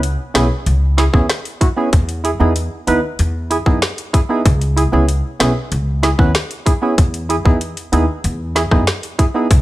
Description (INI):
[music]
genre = dancehall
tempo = 95 BPM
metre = 4/4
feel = straight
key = E major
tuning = A4 = 436 Hz
[part]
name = upright bass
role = bass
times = 0.0-9.6 s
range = B1 to F#2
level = -17 LUFS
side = equal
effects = none
[part]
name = island pop drum kit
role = drums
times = 0.0-9.6 s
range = hi-hat, kick drum, rim click, snare drum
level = -15 LUFS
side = equal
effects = overdrive
[part]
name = percussive organ stab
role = accompaniment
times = 0.3-9.5 s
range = B3 to B4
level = -18 LUFS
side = right 2 dB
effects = chorus
[sound]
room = light reverb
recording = none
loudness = -14 LUFS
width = side -16 dB against mid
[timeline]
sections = 0.0-9.6 A section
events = none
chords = 0.0 C#m7; 1.9 Emaj7; 4.5 C#m7; 7.0 Emaj7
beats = 0.03 0.67 1.30 | 1.93 2.56 3.19 3.82 | 4.45 5.09 5.72 6.35 | 6.98 7.61 8.24 8.88 | 9.51